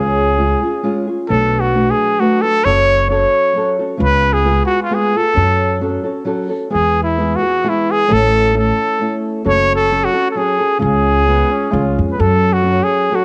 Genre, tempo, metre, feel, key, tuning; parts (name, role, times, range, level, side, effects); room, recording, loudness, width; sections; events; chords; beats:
mexican folk, mariachi; 132 BPM; 3/4; straight; F# minor; A4 = 440 Hz
clear trumpet; melody; 0.0-13.2 s; E4 to C#5; -17 LUFS; equal; cassette tape
nylon-string guitar; accompaniment; 0.0-13.2 s; A2 to B4; -21 LUFS; equal; cassette tape
upright bass; bass; 0.0-12.8 s; F#1 to F#2; -20 LUFS; equal
mellow trumpet; second line; 11.3-12.0 s; B3 to E#4; -29 LUFS; equal; cassette tape
light reverb, studio reverb; home recording on cassette; -15 LUFS; mono
0.0-13.2 A section
0.0 C#; 1.3 Bm7; 2.7 F#m; 4.0 C#7; 5.4 F#m; 6.7 E; 8.1 A; 9.5 F#m; 10.8 C#; 12.2 F#m
0.40 0.85 | 1.31 1.77 2.22 | 2.67 3.11 3.56 | 4.01 4.46 4.91 | 5.37 5.82 6.28 | 6.74 7.20 7.66 | 8.11 8.56 9.02 | 9.46 9.91 10.36 | 10.81 11.27 11.73 | 12.19 12.65 13.11